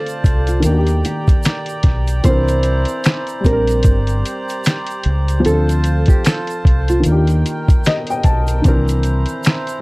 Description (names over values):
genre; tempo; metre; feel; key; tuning
lo-fi hip hop; 75 BPM; 4/4; swing 59% on 16ths; unclear; A4 = 440 Hz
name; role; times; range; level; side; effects
nylon-string guitar; melody; 0.0-7.2 s; F4 to C5; -22 LUFS; right 1 dB; analog delay
dark upright piano; accompaniment; 0.0-9.8 s; D3 to A5; -21 LUFS; left 1 dB; none
hand-pumped harmonium; sustained chords; 0.0-9.8 s; Eb3 to Bb5; -26 LUFS; right 2 dB; none
lo-fi sampler-style drum kit; drums; 0.1-9.8 s; finger snaps, hi-hat, kick drum, snare drum; -14 LUFS; equal; none
tube shaker; percussion; 0.1-9.8 s; none; -37 LUFS; right 5 dB; none
deep dub fingered electric bass; bass; 0.2-9.2 s; G1 to Eb2; -16 LUFS; equal; none
room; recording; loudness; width
light reverb; none; -13 LUFS; side -24 dB against mid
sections
0.0-9.8 A section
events
upright piano fill 7.4-8.6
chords
0.0 Dm7; 0.6 Ebmaj7; 2.2 C9; 3.4 Bb69; 5.4 Dm7; 7.0 Ebmaj7; 8.6 C9